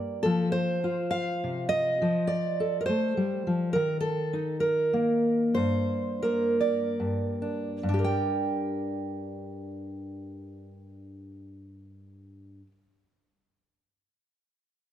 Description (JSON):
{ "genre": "folk, solo fingerstyle acoustic guitar", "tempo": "44-70 BPM (dotted quarters)", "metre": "6/8", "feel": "rubato", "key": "G minor", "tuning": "A4 = 440 Hz", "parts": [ { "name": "fingerpicked steel-string acoustic guitar", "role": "solo", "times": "0.0-12.8 s", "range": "G2 to G5", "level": "-26 LUFS", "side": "equal", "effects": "none" } ], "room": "moderate recital hall reverb, RT60 1.5 s", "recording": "none", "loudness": "-25 LUFS", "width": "side -11 dB against mid", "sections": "0.0-7.8 A section; 7.8-13.1 B section", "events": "slowing down 3.8-7.8", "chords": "0.2 F; 3.8 Eb5; 5.6 Gm" }